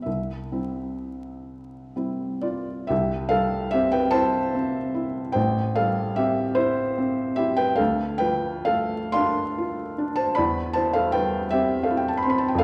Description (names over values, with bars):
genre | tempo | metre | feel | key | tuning
classical, romantic nocturne for solo piano | 40-55 BPM (dotted quarters) | 6/8 | rubato | C major | A4 = 440 Hz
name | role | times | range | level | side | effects
felt-muted upright piano | solo | 0.0-12.6 s | A1 to C6 | -24 LUFS | equal | none
room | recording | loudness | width
wet recital hall reverb, RT60 1.3 s | heard from further back in the room, vinyl crackle | -24 LUFS | mono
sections
0.0-2.9 A section; 2.9-12.6 A section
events
none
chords
0.1 C; 5.4 Am7; 7.8 Dm7; 10.4 C/E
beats
| 0.06 1.49 | 2.91 4.14 | 5.36 6.59 | 7.79 9.16 | 10.38 11.54 | 12.63